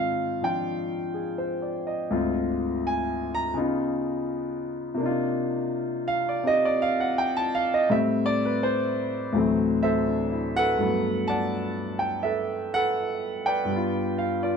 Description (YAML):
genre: solo jazz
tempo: 83 BPM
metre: 4/4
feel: swing 69% on 8ths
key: unclear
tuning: A4 = 437 Hz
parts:
  - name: warm grand piano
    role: solo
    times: 0.0-14.6 s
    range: D2 to Bb5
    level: -24 LUFS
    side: equal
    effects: none
room: moderate club reverb, RT60 0.6 s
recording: none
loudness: -24 LUFS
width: side -6 dB against mid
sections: 0.0-10.8 A section; 10.8-14.6 B section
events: grand piano solo 0.0-10.8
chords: 0.0 Ab6; 2.1 Dm7b5; 3.6 C#9; 5.0 Cm11; 7.9 Am7; 9.3 D13; 10.8 Gmaj9; 13.7 G7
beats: 0.66 1.38 | 2.10 2.83 3.55 4.28 | 5.00 5.72 6.45 7.17 | 7.89 8.62 9.34 10.07 | 10.79 11.52 12.24 12.97 | 13.70 14.42